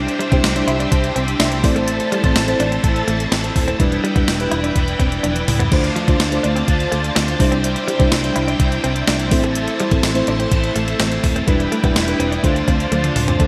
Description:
1980s-style pop; 125 BPM; 4/4; straight; D minor; A4 = 439 Hz
mellow FM electric piano; accompaniment; 0.0-13.4 s; G3 to C6; -24 LUFS; equal; chorus
scooped high-gain guitar; accompaniment; 0.0-13.5 s; A2 to E4; -29 LUFS; equal; distortion, lush chorus
string machine, violins; sustained chords; 0.0-13.5 s; F3 to A5; -26 LUFS; equal; ensemble chorus
vintage muted fingered electric bass; bass; 0.0-13.5 s; Eb1 to D2; -25 LUFS; equal
direct-recorded clean electric guitar; riff; 0.1-13.5 s; F3 to E4; -28 LUFS; equal; lush chorus, delay
clean 12-bit digital drum machine; drums; 0.1-13.5 s; crash cymbal, hi-hat, kick drum, snare drum, tambourine, toms; -21 LUFS; equal; overdrive, gated reverb
moderate lush hall reverb, RT60 1.8 s; bright 1980s-style digital production; -17 LUFS; mono
0.0-13.4 A section
FM electric piano fill 0.4-1.9; drum fill 5.2-5.7, 12.9-13.4
0.0 Cadd9; 1.6 Am; 3.8 Em7; 5.7 Dm7; 7.4 Cadd9; 9.3 Am; 11.5 Em7; 12.4 Dm7
0.44 0.92 1.40 | 1.88 2.36 2.84 3.32 | 3.80 4.28 4.76 5.24 | 5.72 6.20 6.68 7.16 | 7.64 8.12 8.60 9.08 | 9.56 10.04 10.52 11.00 | 11.48 11.96 12.44 12.92 | 13.40

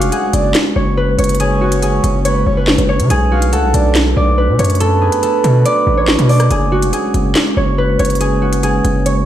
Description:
hip hop, drill; 141 BPM; 4/4; half-time; F# minor; A4 = 440 Hz
concert harp; melody; 0.0-9.3 s; F#4 to D5; -17 LUFS; left 1 dB; digital delay
breathy flute-like synth lead; second line; 0.0-6.5 s; B4 to F#5; -21 LUFS; right 3 dB; chorus, digital delay
glass harmonica; sustained chords; 0.0-9.3 s; G#3 to C#5; -21 LUFS; right 3 dB
distorted 808-style bass; bass; 0.0-9.3 s; E#1 to C#3; -14 LUFS; equal; distortion
drill drum kit; drums; 0.0-9.2 s; handclaps, hi-hat, rim click, snare drum; -19 LUFS; equal
light reverb, digital ambience; played on a big sound system in a bare room, stone room reverb; -11 LUFS; side -11 dB against mid
0.0-6.5 A section; 6.5-9.3 A section
0.0 F#sus2; 3.1 Bm7; 6.5 F#sus2
0.12 0.55 0.97 | 1.40 1.82 2.25 2.67 | 3.10 3.53 3.95 4.38 | 4.80 5.23 5.65 6.08 | 6.50 6.93 7.36 7.78 | 8.21 8.63 9.06

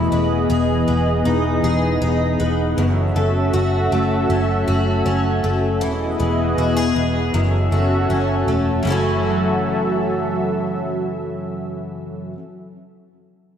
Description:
dream pop; 79 BPM; 4/4; straight; F# dorian; A4 = 439 Hz
lush unison pad; sustained chords; 0.0-12.2 s; E3 to E5; -21 LUFS; equal; chorus
picked twelve-string acoustic guitar; arpeggios; 0.0-12.4 s; F#2 to G#4; -22 LUFS; left 2 dB; analog chorus, diffuse ambient delay
vintage muted picked electric bass; bass; 0.0-12.2 s; E1 to F#1; -21 LUFS; right 1 dB
wet lush hall reverb, RT60 2.1 s; dreamy mix soaked in reverb; -17 LUFS; side -8 dB against mid
0.0-8.9 A section; 8.9-11.9 B section
0.0 Emaj7; 2.8 F#m7; 5.8 Emaj7; 7.3 F#m7
0.50 1.26 2.02 | 2.77 3.54 4.29 5.05 | 5.81 6.57 7.33 8.09 | 8.85 9.61 10.37 11.13

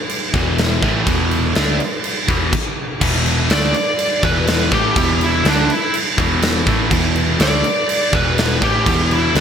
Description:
hard rock; 123 BPM; 4/4; straight; A4 = 438 Hz
huge arena drum kit; drums; 0.1-9.4 s; crash cymbal, kick drum, snare drum; -18 LUFS; equal; gated reverb
cranked stack guitar; riff; 0.3-9.4 s; E2 to D4; -24 LUFS; left 9 dB; overdrive, phaser
overdriven semi-hollow guitar; riff; 0.3-9.4 s; E2 to D4; -23 LUFS; right 9 dB; lush chorus
sludgy distorted guitar; riff; 0.3-9.4 s; E2 to D4; -24 LUFS; equal; overdrive
hollow-body short-scale picked electric bass; bass; 0.3-9.4 s; E1 to D2; -22 LUFS; equal
bluesy overdriven lead guitar; melody; 3.5-9.4 s; D4 to D5; -19 LUFS; equal; distortion
moderate plate reverb, RT60 2.1 s; bright 1980s-style digital production; -14 LUFS; side -8 dB against mid
0.0-3.0 A section; 3.0-9.4 B section
stop 2.5-3.0; lead electric guitar solo 3.0-9.4
0.0 E5; 2.5 N.C.; 3.0 E5
0.09 0.58 | 1.07 1.55 2.04 2.52 | 3.01 3.50 3.98 4.47 | 4.96 5.45 5.93 6.42 | 6.91 7.40 7.88 8.37 | 8.86 9.35

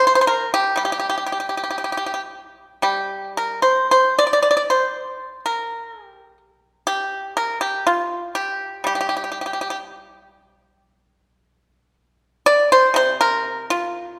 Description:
chinese traditional, Chinese solo plucked strings; 59 BPM; 2/4; uneven beats, rubato; G yu mode; A4 = 440 Hz
pipa; solo; 0.0-14.2 s; C3 to D5; -20 LUFS; equal
wet concert hall reverb, RT60 1.7 s; recorded in a church or concert hall; -20 LUFS; mono
0.0-10.9 A section; 10.9-14.2 B section
| 0.77 1.79 | 2.84 3.88 | 4.91 5.90 | 6.88 7.86 | 8.86 9.88 | 10.92 11.94 | 12.94 13.92

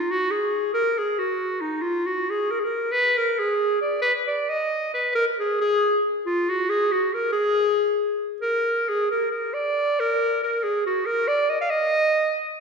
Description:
balkan folk; free time; Ab dorian sharp4; A4 = 440 Hz
bright clarinet; solo; 0.0-12.6 s; Eb4 to F5; -21 LUFS; equal
wet concert hall reverb, RT60 1.8 s; recorded in a church or concert hall; -21 LUFS; side -5 dB against mid
0.0-8.4 A section; 8.4-12.6 B section
free time

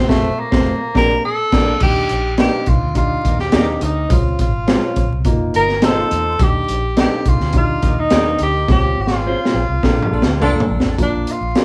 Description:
uptempo 1960s-style soul; 105 BPM; 4/4; straight; A4 = 439 Hz
warm tenor saxophone; melody; 0.0-11.6 s; A3 to Bb4; -22 LUFS; equal
dark upright piano; accompaniment; 0.0-11.6 s; A3 to Bb4; -26 LUFS; equal
clean electric guitar; stabs; 0.0-11.6 s; Ab3 to D5; -27 LUFS; equal; spring reverb
vintage muted fingered electric bass; bass; 0.0-11.5 s; F1 to Bb2; -24 LUFS; equal
crunchy breakbeat drum kit; drums; 0.1-11.6 s; crash cymbal, hi-hat, kick drum, snare drum, toms; -20 LUFS; equal
mellow horn section; second line; 3.2-11.0 s; D4 to C5; -28 LUFS; equal
moderate studio reverb, RT60 0.7 s; band playing live in one room, vinyl crackle; -16 LUFS; mono
0.0-1.8 A section; 1.8-11.0 B section
band accent 0.0-1.8; drum fill 8.7-11.0
0.0 F; 0.7 Bb6; 1.8 Ebmaj7; 4.1 Dbmaj7; 5.2 F7sus4; 6.4 Ebmaj7; 8.7 Dbmaj7; 9.8 Bbmaj7; 11.0 Bb
0.09 0.66 1.24 | 1.81 2.38 2.96 3.53 | 4.10 4.67 5.25 5.82 | 6.39 6.97 7.54 8.11 | 8.69 9.26 9.83 10.41 | 10.98 11.55

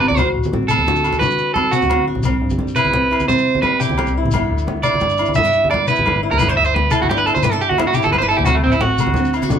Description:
highlife guitar band; 116 BPM (dotted quarters); 12/8; straight; G major; A4 = 437 Hz
flamenco guitar; accompaniment; 0.0-9.6 s; G2 to F#4; -22 LUFS; left 2 dB
electric guitar at the edge of break-up; arpeggios; 0.0-9.3 s; A3 to E5; -16 LUFS; right 3 dB
clear double bass; bass; 0.0-9.6 s; G1 to D3; -22 LUFS; left 1 dB
congas; percussion; 0.1-9.6 s; -24 LUFS; right 1 dB
agogo bells; percussion; 0.2-9.5 s; -27 LUFS; left 4 dB
shekere; percussion; 0.2-9.6 s; -25 LUFS; left 5 dB
moderate small room reverb, RT60 0.6 s; band playing live in one room; -14 LUFS; side -8 dB against mid
0.0-9.6 A section
clean electric guitar solo 0.0-9.6
0.2 D7; 2.3 Cmaj7; 4.3 G6; 8.5 D7
| 0.18 0.70 1.22 1.74 | 2.26 2.78 3.29 3.81 | 4.33 4.85 5.37 5.89 | 6.41 6.92 7.44 7.96 | 8.48 8.99 9.51

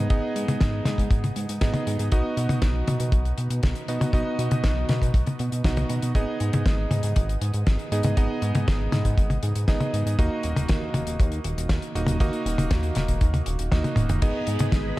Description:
italo disco; 119 BPM; 4/4; straight; G# minor; A4 = 440 Hz
bright electric grand piano; stabs; 0.0-15.0 s; A#3 to D#5; -29 LUFS; right 2 dB; digital delay, shimmer reverb
chorused synth bass; bass; 0.0-14.9 s; D#1 to B2; -26 LUFS; equal
damped 70s drum kit; drums; 0.1-14.8 s; crash cymbal, hi-hat, snare drum, toms; -28 LUFS; left 1 dB
kick drum; drums; 0.1-14.8 s; -22 LUFS; equal
string machine, full ensemble; sustained chords; 14.2-15.0 s; G#4 to B5; -36 LUFS; left 4 dB; phaser, ensemble chorus, shimmer reverb
light reverb, studio ambience; dark, warm production; -21 LUFS; side -18 dB against mid
0.0-15.0 A section
drum fill 13.7-14.2
0.0 G#m; 2.1 B; 6.2 G#m; 10.2 D#m; 14.2 G#m
| 0.10 0.61 1.11 1.61 | 2.12 2.62 3.13 3.63 | 4.14 4.64 5.14 5.65 | 6.15 6.66 7.16 7.67 | 8.17 8.67 9.18 9.68 | 10.19 10.69 11.20 11.70 | 12.20 12.71 13.21 13.72 | 14.22 14.72

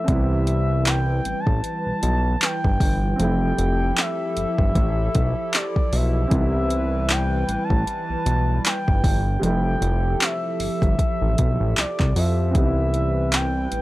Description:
contemporary R&B; 77 BPM; 4/4; swing 58% on 16ths; C major; A4 = 441 Hz
gliding portamento lead; melody; 0.0-13.8 s; D5 to A5; -27 LUFS; equal; chorus
warm grand piano; accompaniment; 0.0-13.8 s; C3 to E4; -30 LUFS; right 2 dB
hollow soft pad; sustained chords; 0.6-13.8 s; E3 to B4; -30 LUFS; equal; chorus
fat analog bass; bass; 0.1-13.8 s; F1 to F2; -22 LUFS; equal
smooth R&B drum kit; drums; 0.1-13.8 s; handclaps, hi-hat, kick drum; -22 LUFS; equal; overdrive
digital ambience; dry, gritty hardware recording; -19 LUFS; side -17 dB against mid
0.1-13.8 A section
0.1 Cmaj7; 3.2 Fmaj9; 6.3 Cmaj7; 9.4 Fmaj9; 12.5 Cmaj7
| 0.08 0.86 1.64 2.42 | 3.20 3.98 4.75 5.53 | 6.31 7.09 7.87 8.65 | 9.43 10.21 10.99 11.77 | 12.55 13.32

